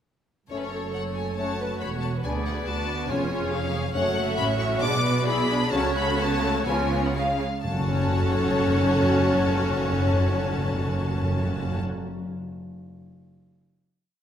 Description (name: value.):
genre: quick classical-period movement for symphony orchestra.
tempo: 119-142 BPM.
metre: 4/4.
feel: rubato.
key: F# minor.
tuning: A4 = 440 Hz.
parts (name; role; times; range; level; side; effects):
clear chamber violin section; melody; 0.5-11.8 s; B4 to D6; -32 LUFS; left 4 dB; none.
warm chamber violin section; second line; 0.5-11.8 s; G#4 to E#5; -30 LUFS; left 2 dB; none.
rich chamber viola section; accompaniment; 0.5-11.8 s; G#3 to A4; -30 LUFS; right 1 dB; none.
mellow French horn section; sustained chords; 0.5-11.8 s; E#3 to D4; -29 LUFS; left 1 dB; none.
dark studio double bass section; bass; 0.5-11.8 s; E1 to D2; -31 LUFS; right 3 dB; none.
warm studio cello section; bass; 0.5-11.8 s; D2 to C#3; -31 LUFS; right 2 dB; none.
timpani; percussion; 4.0-11.9 s; F#2 to C#3; -29 LUFS; left 1 dB; none.
room: wet scoring stage reverb, RT60 1.8 s.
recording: none.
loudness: -22 LUFS.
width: side -9 dB against mid.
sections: 0.5-7.6 A section; 7.6-11.5 final chord.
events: slowing down 3.1-7.6.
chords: 0.5 F#m; 2.2 Bm/D; 3.1 C#7/E#; 4.0 F#m; 4.8 G#dim/B; 5.7 F#m/C#; 6.7 C#7; 7.6 F#m.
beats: | 0.51 0.94 1.38 1.81 | 2.25 2.68 3.10 3.53 | 3.95 4.38 4.82 5.27 | 5.72 6.18 6.66 7.14 | 7.64 8.12 8.62 9.10 | 9.59 10.07 10.56 11.05.